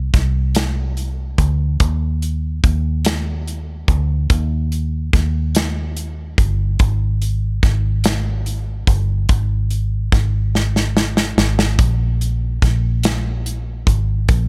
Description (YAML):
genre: six-eight pop ballad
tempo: 48 BPM (dotted quarters)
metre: 6/8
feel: straight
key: unclear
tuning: A4 = 438 Hz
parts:
  - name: vintage muted fingered electric bass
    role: bass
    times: 0.0-14.5 s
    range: G1 to Eb2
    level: -21 LUFS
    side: equal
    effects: none
  - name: natural country drum kit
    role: drums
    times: 0.1-14.5 s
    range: hi-hat, kick drum, snare drum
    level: -19 LUFS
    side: equal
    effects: none
room: little or no reverb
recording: none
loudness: -19 LUFS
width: mono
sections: 0.0-14.5 A section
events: drum fill 10.5-11.8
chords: none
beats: 0.56 | 1.80 3.05 | 4.30 5.55 | 6.80 8.04 | 9.29 10.54 | 11.79 13.04 | 14.29